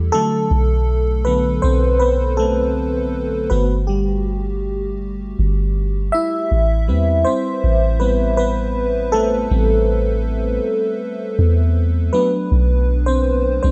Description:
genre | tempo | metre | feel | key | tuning
contemporary R&B | 80 BPM | 4/4 | straight | A dorian | A4 = 440 Hz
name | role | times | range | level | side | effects
FM electric piano with soft pad layer | accompaniment | 0.0-13.7 s | C3 to E5 | -21 LUFS | equal | chorus
soft 808-style bass | bass | 0.0-13.7 s | G1 to E2 | -20 LUFS | equal | none
room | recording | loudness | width
light reverb | none | -18 LUFS | mono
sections
0.0-13.7 A section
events
FM electric piano solo 0.0-13.7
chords
0.1 Bm7; 3.5 Gmaj7(no3); 6.5 Am9; 12.1 Bm7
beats
| 0.51 1.26 2.01 2.76 | 3.51 4.26 5.01 5.76 | 6.51 7.26 8.01 8.76 | 9.51 10.26 11.01 11.76 | 12.51 13.26

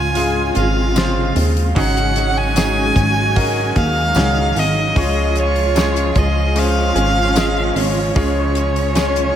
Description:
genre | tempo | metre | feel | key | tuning
pop ballad | 75 BPM | 4/4 | straight | Db major | A4 = 443 Hz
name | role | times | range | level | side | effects
warm violin | melody | 0.0-9.4 s | Db5 to Ab5 | -20 LUFS | equal | slapback echo
dark symphonic cello section | second line | 0.0-9.4 s | Ab2 to F4 | -26 LUFS | right 2 dB | slapback echo
clear concert grand piano | accompaniment | 0.0-9.4 s | Ab2 to F5 | -23 LUFS | left 2 dB | slapback echo
warm symphonic string section | sustained chords | 0.0-9.4 s | Db3 to Gb4 | -26 LUFS | right 1 dB | none
direct-recorded clean electric guitar | arpeggios | 0.0-9.4 s | Ab2 to Ab4 | -27 LUFS | right 6 dB | tremolo, slapback echo, ping-pong delay
plucky analog bass | bass | 0.0-9.3 s | Ab1 to Eb2 | -19 LUFS | equal | none
damped 70s drum kit | drums | 0.2-9.3 s | hi-hat, kick drum, snare drum | -21 LUFS | left 1 dB | none
tambourine | percussion | 1.0-9.2 s | none | -33 LUFS | left 9 dB | none
room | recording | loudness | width
moderate lush hall reverb, RT60 2.7 s | big arena sound | -14 LUFS | side -10 dB against mid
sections
0.0-9.4 A section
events
none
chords
0.0 Db; 1.8 Ab7sus4; 5.0 Db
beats
0.16 0.96 | 1.76 2.56 3.36 4.16 | 4.96 5.76 6.56 7.36 | 8.16 8.96

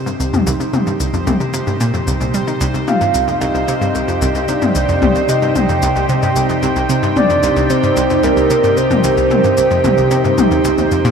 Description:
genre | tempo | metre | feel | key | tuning
ambient, sequencer-driven space music | 112 BPM | 4/4 | straight | C minor | A4 = 439 Hz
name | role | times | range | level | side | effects
evolving wavetable pad | sustained chords | 0.0-11.1 s | C3 to G5 | -18 LUFS | equal | chorus, built-in reverb, shimmer reverb
bubbling stepped-filter texture | texture | 0.0-11.1 s | C5 | -28 LUFS | right 2 dB | chorus, built-in reverb, shimmer reverb
analog pluck | riff | 0.1-11.1 s | C2 to G3 | -18 LUFS | equal | chorus, tape echo
electronic shaker and toms | percussion | 0.1-11.1 s | none | -21 LUFS | left 4 dB | tape echo
soft octave-layered synth lead | melody | 2.9-10.6 s | Bb4 to G5 | -17 LUFS | right 1 dB | chorus, phaser, shimmer reverb, tape echo
room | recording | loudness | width
wet huge ambient reverb, RT60 8.6 s | dreamy mix soaked in reverb | -12 LUFS | side -6 dB against mid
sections
0.0-11.1 A section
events
fade-in on ambient pad 0.0-11.1; fade-in on synth texture 0.0-11.1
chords
0.0 Cm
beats
| 0.47 1.00 1.54 2.07 | 2.61 3.15 3.68 4.22 | 4.75 5.29 5.82 6.36 | 6.89 7.43 7.97 8.50 | 9.04 9.57 10.11 10.64

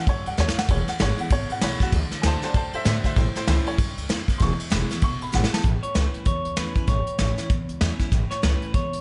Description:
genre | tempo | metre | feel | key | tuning
rockabilly | 194 BPM | 4/4 | swing 60% on 8ths | A major | A4 = 442 Hz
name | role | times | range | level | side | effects
clear upright piano | accompaniment | 0.0-5.6 s | E3 to C#6 | -32 LUFS | equal | none
picked steel-string acoustic guitar | accompaniment | 0.0-9.0 s | E2 to F#4 | -34 LUFS | equal | none
upright bass | bass | 0.1-9.0 s | E1 to A2 | -28 LUFS | equal | none
soft brush drum kit | drums | 0.1-9.0 s | hi-hat, kick drum, ride cymbal, snare drum | -26 LUFS | equal | none
electric guitar through a small old amp | melody | 5.8-9.0 s | B4 to C#5 | -33 LUFS | equal | spring reverb, tape echo
room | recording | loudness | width
light reverb, small room ambience | nothing above 11.0 kHz | -23 LUFS | mono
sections
0.0-5.6 A section; 5.6-9.0 B section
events
upright piano solo 0.0-5.6; drum fill 0.4-0.7, 5.3-5.6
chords
0.0 A; 0.7 E; 1.9 D; 3.2 A; 4.4 E; 5.6 A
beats
0.07 0.38 | 0.69 1.00 1.31 1.62 | 1.93 2.24 2.55 2.86 | 3.17 3.48 3.79 4.09 | 4.40 4.71 5.02 5.33 | 5.64 5.95 6.26 6.57 | 6.88 7.19 7.50 7.81 | 8.12 8.43 8.74

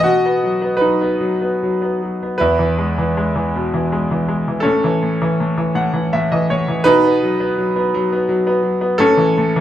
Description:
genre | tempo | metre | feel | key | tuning
classical, lyrical solo piano | 74-85 BPM | 3/4 | rubato | A lydian | A4 = 440 Hz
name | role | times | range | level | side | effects
bright concert grand piano | solo | 0.0-9.6 s | E2 to F#5 | -14 LUFS | equal | none
room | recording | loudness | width
wet studio reverb, RT60 0.6 s | heard from further back in the room | -15 LUFS | side -11 dB against mid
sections
0.0-9.6 A section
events
grand piano fill 5.4-6.8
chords
0.0 B; 2.4 E; 4.6 A; 6.8 B; 9.0 A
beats
| 0.04 0.82 1.61 | 2.39 3.16 3.90 | 4.64 5.37 6.11 | 6.85 7.56 8.27 | 8.99

